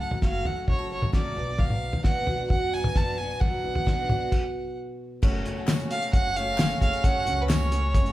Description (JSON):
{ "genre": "indie folk with a building arrangement", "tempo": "132 BPM", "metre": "4/4", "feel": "straight", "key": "F# harmonic minor", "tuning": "A4 = 439 Hz", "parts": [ { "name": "warm fiddle", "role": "melody", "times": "0.0-8.1 s", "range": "B4 to A5", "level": "-29 LUFS", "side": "right 2 dB", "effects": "none" }, { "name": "fingerpicked steel-string acoustic guitar", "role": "accompaniment", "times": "0.0-6.1 s", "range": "F#2 to A4", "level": "-34 LUFS", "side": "right 1 dB", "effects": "none" }, { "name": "picked twelve-string acoustic guitar", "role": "accompaniment", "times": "0.0-8.1 s", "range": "F#2 to F#4", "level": "-36 LUFS", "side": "left 2 dB", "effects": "none" }, { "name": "upright bass", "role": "bass", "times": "0.0-8.1 s", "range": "F#1 to B2", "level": "-32 LUFS", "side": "equal", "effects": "none" }, { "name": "cloth-damped thuddy drum kit", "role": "drums", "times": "0.1-8.1 s", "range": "crash cymbal, hi-hat, kick drum, snare drum, toms", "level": "-25 LUFS", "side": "equal", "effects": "none" }, { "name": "clear trombone", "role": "second line", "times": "5.2-8.1 s", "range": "C#4", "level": "-36 LUFS", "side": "equal", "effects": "none" }, { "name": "clear upright piano", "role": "accompaniment", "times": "5.2-8.1 s", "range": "F#1 to C#5", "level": "-37 LUFS", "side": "right 2 dB", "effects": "none" }, { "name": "group handclap", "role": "percussion", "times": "5.7-7.6 s", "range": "none", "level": "-40 LUFS", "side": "left 4 dB", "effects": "none" }, { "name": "tambourine", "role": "percussion", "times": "5.7-7.6 s", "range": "none", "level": "-44 LUFS", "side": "right 4 dB", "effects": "none" } ], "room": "moderate large studio reverb, RT60 0.9 s", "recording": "band playing live in one room", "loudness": "-23 LUFS", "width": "side -15 dB against mid", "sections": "0.0-5.2 A section; 5.2-8.1 B section", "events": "stop 4.3-5.2", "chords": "0.0 F#m; 1.4 Bm; 5.2 F#m", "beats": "0.22 0.68 1.14 | 1.59 2.05 2.50 2.96 | 3.41 3.87 4.32 4.78 | 5.23 5.68 6.14 6.59 | 7.04 7.50 7.95" }